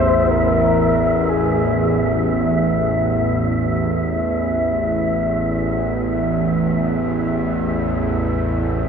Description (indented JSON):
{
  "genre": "dark ambient drone",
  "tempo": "free time",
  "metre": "none",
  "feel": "none",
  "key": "unclear",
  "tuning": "A4 = 439 Hz",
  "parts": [
    { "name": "mellow horn-like synth lead", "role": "melody", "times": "0.0-2.3 s", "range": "G#4 to C5", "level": "-22 LUFS", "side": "left 4 dB", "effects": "lush chorus, analog delay" },
    { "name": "bowed-like drone", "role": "drone", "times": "0.0-8.9 s", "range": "A1 to E2", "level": "-18 LUFS", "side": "right 1 dB", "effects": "built-in reverb" },
    { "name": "wind-like tuned noise texture", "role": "texture", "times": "0.0-8.9 s", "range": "E5", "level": "-23 LUFS", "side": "left 1 dB", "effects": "built-in reverb" }
  ],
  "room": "wet spring reverb, RT60 2.5 s",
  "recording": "echo-heavy mix",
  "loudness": "-16 LUFS",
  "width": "side -6 dB against mid",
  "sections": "0.0-8.9 A section",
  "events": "none",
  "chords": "0.0 A5",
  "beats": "free time"
}